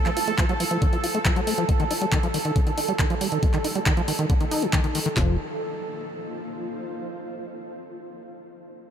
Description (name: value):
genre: psychedelic trance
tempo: 138 BPM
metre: 4/4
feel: straight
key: unclear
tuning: A4 = 438 Hz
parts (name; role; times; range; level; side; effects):
- bubbling stepped-filter texture; sustained chords; 0.0-5.2 s; A4; -30 LUFS; right 3 dB; chorus, built-in reverb, sidechain pumping
- granular cloud pad; texture; 0.0-6.9 s; Bb3 to F5; -38 LUFS; equal; built-in reverb, sidechain pumping
- overdriven acid bass; riff; 0.1-5.4 s; D3 to F4; -28 LUFS; moving between left 5 dB and right 5 dB; auto-pan, sidechain pumping, analog delay
- drum and bass drum kit; drums; 0.1-5.1 s; handclaps, hi-hat; -30 LUFS; equal; overdrive, small room ambience
- drum and bass drum kit; drums; 0.4-5.3 s; handclaps, kick drum, snare drum; -22 LUFS; equal; overdrive, small room ambience
- plucky analog bass; bass; 5.2-5.4 s; F1; -24 LUFS; equal; none
room: moderate huge ambient reverb, RT60 8.0 s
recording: dreamy mix soaked in reverb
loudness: -22 LUFS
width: side -9 dB against mid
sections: 0.0-5.2 A section; 5.2-6.9 B section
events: filter sweep on acid bass 0.0-5.2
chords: 0.0 F5; 1.7 Eb5; 5.2 F5